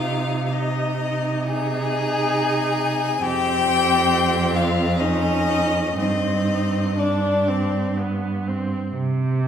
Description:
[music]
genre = classical, slow romantic movement for string quartet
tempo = 59-70 BPM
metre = 3/4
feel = rubato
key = C minor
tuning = A4 = 437 Hz
[part]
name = clear violin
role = melody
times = 0.0-8.0 s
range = D5 to Ab5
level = -24 LUFS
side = left 6 dB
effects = none
[part]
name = clear violin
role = second line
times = 0.0-8.0 s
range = D4 to Ab4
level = -26 LUFS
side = left 2 dB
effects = none
[part]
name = clear viola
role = accompaniment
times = 0.0-8.9 s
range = B3 to Eb4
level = -26 LUFS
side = right 2 dB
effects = none
[part]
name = rich cello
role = bass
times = 0.0-9.5 s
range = F2 to C3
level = -24 LUFS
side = right 2 dB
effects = none
[sound]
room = wet recital hall reverb, RT60 1.5 s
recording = heard from further back in the room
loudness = -19 LUFS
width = side -8 dB against mid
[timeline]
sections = 0.0-8.9 A section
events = none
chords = 0.0 Cm; 3.2 F5; 5.0 Db/F; 6.0 Gsus4; 8.0 G; 8.9 C5

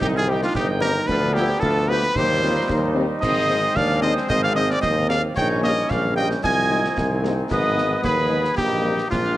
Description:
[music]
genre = military-style march for wind band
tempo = 112 BPM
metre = 2/4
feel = straight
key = unclear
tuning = A4 = 440 Hz
[part]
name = mellow cornet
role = melody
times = 0.0-9.4 s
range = F4 to Ab5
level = -23 LUFS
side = equal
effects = tape echo
[part]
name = clear euphonium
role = second line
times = 0.0-9.2 s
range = Bb3 to G4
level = -31 LUFS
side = right 4 dB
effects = none
[part]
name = mellow piccolo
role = second line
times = 0.0-9.4 s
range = F5 to Ab6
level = -29 LUFS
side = right 3 dB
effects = none
[part]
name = warm woodwind section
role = second line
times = 0.0-9.4 s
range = D4 to Eb5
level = -30 LUFS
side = left 2 dB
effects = tape echo
[part]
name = clear trombone section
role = sustained chords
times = 0.0-9.4 s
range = Eb3 to Eb4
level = -31 LUFS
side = left 1 dB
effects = none
[part]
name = warm tuba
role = bass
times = 0.0-9.4 s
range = G1 to Eb2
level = -23 LUFS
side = equal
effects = none
[part]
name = concert snare drum, concert bass drum and clash cymbals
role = drums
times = 0.0-9.3 s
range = none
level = -30 LUFS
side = right 1 dB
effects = vintage 12-bit sampler grit
[part]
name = mellow French horn section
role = accompaniment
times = 0.3-8.9 s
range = F3 to Ab4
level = -28 LUFS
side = left 3 dB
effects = none
[sound]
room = light reverb, small room ambience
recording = cassette tape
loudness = -18 LUFS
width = side -15 dB against mid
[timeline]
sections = 0.0-9.4 A section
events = none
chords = 0.0 Cm; 1.1 Bdim/D; 2.2 Cm/Eb; 3.2 Ab; 5.4 Gdim/Bb; 6.4 Ab/C; 7.5 Abm; 8.6 Eb/Bb

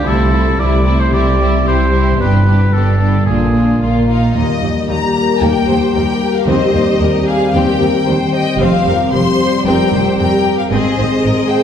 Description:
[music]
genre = cinematic, heroic adventure film score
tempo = 113 BPM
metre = 4/4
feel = straight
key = Eb major from 4.4 s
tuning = A4 = 440 Hz
[part]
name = warm symphonic violin section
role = melody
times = 0.0-11.6 s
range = E4 to C6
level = -21 LUFS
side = left 3 dB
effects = none
[part]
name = clear oboe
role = second line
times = 0.0-3.8 s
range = Ab4 to D5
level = -20 LUFS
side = right 1 dB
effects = none
[part]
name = warm symphonic violin section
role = second line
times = 0.0-11.6 s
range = D4 to Eb5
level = -22 LUFS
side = left 3 dB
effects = none
[part]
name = warm symphonic viola section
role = accompaniment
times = 0.0-11.6 s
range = G3 to Ab4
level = -20 LUFS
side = equal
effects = none
[part]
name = concert harp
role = arpeggios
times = 0.0-11.6 s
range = G2 to E5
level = -21 LUFS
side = left 5 dB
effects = none
[part]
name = rich studio cello section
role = bass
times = 0.1-11.3 s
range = Eb2 to C3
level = -20 LUFS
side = right 2 dB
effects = none
[part]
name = warm studio double bass section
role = bass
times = 0.1-11.3 s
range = F1 to Eb2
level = -17 LUFS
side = right 1 dB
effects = none
[part]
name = mellow French horn section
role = sustained chords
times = 4.4-11.6 s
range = G3 to C4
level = -18 LUFS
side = left 2 dB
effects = none
[part]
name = timpani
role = percussion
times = 6.5-7.2 s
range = Eb3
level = -24 LUFS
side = equal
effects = none
[sound]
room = wet recital hall reverb, RT60 1.6 s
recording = heard from further back in the room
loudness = -11 LUFS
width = side -8 dB against mid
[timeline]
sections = 0.0-4.4 A section; 4.4-11.6 B section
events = none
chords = 0.1 Am/C; 1.1 C; 2.2 G; 3.3 Bb7; 4.4 Eb; 6.5 Cm/Eb; 8.6 Fsus2; 10.7 Ab

